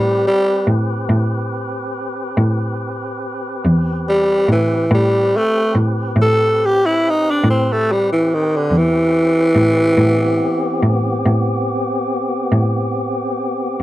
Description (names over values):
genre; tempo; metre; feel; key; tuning
slow blues; 47 BPM (dotted quarters); 12/8; straight; A minor; A4 = 440 Hz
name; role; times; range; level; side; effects
growling tenor saxophone; melody; 0.0-11.2 s; D3 to A4; -14 LUFS; equal; none
tonewheel organ; sustained chords; 0.0-13.8 s; B3 to B4; -23 LUFS; equal; slow rotary speaker
dark cello; bass; 0.0-13.8 s; E2 to A2; -18 LUFS; equal; none
room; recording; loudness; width
light reverb; dry, close 1970s-style studio recording; -14 LUFS; side -15 dB against mid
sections
0.0-13.8 A section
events
tenor saxophone solo 0.0-13.8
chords
0.0 Am7